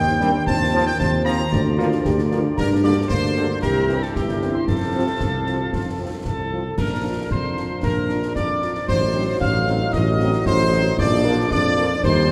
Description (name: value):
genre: military-style march for wind band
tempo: 114 BPM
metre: 2/4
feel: straight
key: Bb major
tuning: A4 = 445 Hz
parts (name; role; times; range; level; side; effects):
- warm trumpet section; melody; 0.0-12.3 s; G4 to Bb5; -29 LUFS; equal; none
- dark euphonium; second line; 0.0-6.5 s; Bb3 to G4; -29 LUFS; equal; none
- mellow piccolo; second line; 0.0-12.3 s; G5 to Bb6; -31 LUFS; equal; none
- mellow woodwind section; second line; 0.0-12.3 s; F4 to F5; -31 LUFS; equal; none
- mellow tuba; bass; 0.0-12.3 s; G1 to G2; -25 LUFS; equal; none
- concert snare drum, concert bass drum and clash cymbals; drums; 0.1-12.2 s; none; -29 LUFS; equal; none
- dark French horn section; accompaniment; 0.2-11.9 s; F3 to C5; -33 LUFS; equal; none
- mellow trombone section; sustained chords; 0.2-12.3 s; D3 to Eb4; -31 LUFS; equal; none
room: wet church reverb, RT60 3.7 s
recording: recorded in a church or concert hall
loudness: -20 LUFS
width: mono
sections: 0.0-6.8 A section; 6.8-12.3 B section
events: none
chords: 0.5 F5/Eb; 1.5 Bb/D; 2.6 Gm; 3.6 C; 4.7 F; 6.8 Bb; 8.9 Adim7; 11.0 Bb